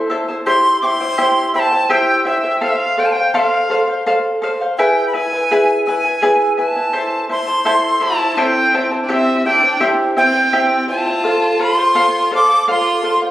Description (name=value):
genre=andean folk, Andean ensemble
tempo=83 BPM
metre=3/4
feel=straight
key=unclear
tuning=A4 = 440 Hz
part: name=charango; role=accompaniment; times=0.0-13.3 s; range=E4 to A5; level=-16 LUFS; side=equal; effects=none
part: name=bright reedy quena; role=melody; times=0.5-13.2 s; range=E5 to D6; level=-16 LUFS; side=equal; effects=none
part: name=clear violin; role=second line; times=8.0-13.2 s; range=C4 to A4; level=-22 LUFS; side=equal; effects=none
room=wet recital hall reverb, RT60 1.7 s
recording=recorded on a phone in the room, club ambience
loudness=-13 LUFS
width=side -14 dB against mid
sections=0.5-13.3 A section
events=none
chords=0.5 C; 2.6 F; 4.8 E; 6.9 Am; 9.1 C; 11.2 F